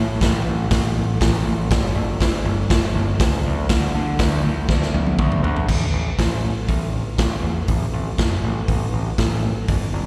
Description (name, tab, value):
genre	garage rock duo or trio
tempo	120 BPM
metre	4/4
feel	straight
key	unclear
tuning	A4 = 440 Hz
part	growling picked electric bass	bass	0.0-10.1 s	F#1 to D3	-24 LUFS	equal	overdrive
part	raw garage drum kit	drums	0.2-9.8 s	crash cymbal, hi-hat, kick drum, snare drum, toms	-23 LUFS	equal	none
room	little or no reverb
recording	live gig heard through the venue's PA, recital hall reverb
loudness	-20 LUFS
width	mono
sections	0.0-5.7 A section; 5.7-10.1 B section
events	drum fill 4.7-5.7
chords	none